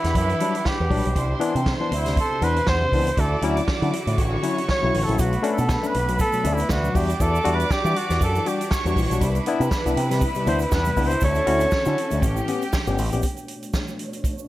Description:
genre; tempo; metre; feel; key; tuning
disco; 119 BPM; 4/4; swing 56% on 16ths; B minor; A4 = 438 Hz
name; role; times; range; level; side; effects
clear flugelhorn; melody; 0.0-12.5 s; E4 to C#5; -25 LUFS; right 1 dB; none
warm studio violin section; second line; 0.0-13.2 s; G4 to D6; -29 LUFS; right 1 dB; analog delay
barky tine electric piano; accompaniment; 0.0-13.2 s; A2 to G4; -26 LUFS; left 4 dB; none
bright studio string section; sustained chords; 0.0-14.5 s; B2 to F#5; -32 LUFS; right 1 dB; low-pass filter
picked electric bass with an envelope filter; bass; 0.0-13.2 s; G1 to E3; -24 LUFS; equal; none
vintage drum kit; drums; 0.0-14.4 s; hi-hat, kick drum, snare drum; -26 LUFS; right 1 dB; none
tube shaker; percussion; 5.2-14.5 s; none; -41 LUFS; right 12 dB; none
room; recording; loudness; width
small room reverb; none; -19 LUFS; side -15 dB against mid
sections
0.0-13.2 A section; 13.2-14.5 B section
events
flugelhorn solo 0.0-13.2; filter sweep on string section 13.2-14.5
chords
0.0 Em9; 1.2 Cmaj9; 3.2 Dmaj9; 5.2 Bm9; 7.0 Em9; 9.2 Cmaj9; 11.2 Dmaj9; 12.2 A7; 13.2 Bm9

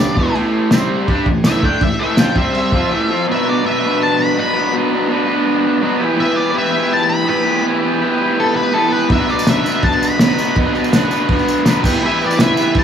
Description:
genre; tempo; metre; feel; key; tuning
garage rock duo or trio; 165 BPM; 4/4; straight; unclear; A4 = 440 Hz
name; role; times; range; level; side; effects
octave-fuzz lead guitar; melody; 0.0-12.8 s; A4 to B5; -19 LUFS; left 2 dB; distortion
raw garage guitar; riff; 0.0-12.8 s; E2 to B4; -15 LUFS; equal; overdrive
cloth-damped thuddy drum kit; drums; 0.2-2.8, 9.1-12.8 s; crash cymbal, kick drum, snare drum; -17 LUFS; equal; none
tambourine; percussion; 0.7-2.3, 9.3-12.7 s; none; -31 LUFS; right 4 dB; none
room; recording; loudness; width
light reverb, small room ambience; small room reverb; -13 LUFS; side -8 dB against mid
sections
0.0-3.3 A section; 3.3-12.8 B section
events
lead electric guitar solo 0.0-3.3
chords
0.2 E5; 0.4 A5; 0.7 C5; 1.1 A5; 2.4 C5; 2.7 A5; 3.3 Bm; 6.0 Em; 9.1 Bm; 11.8 Em

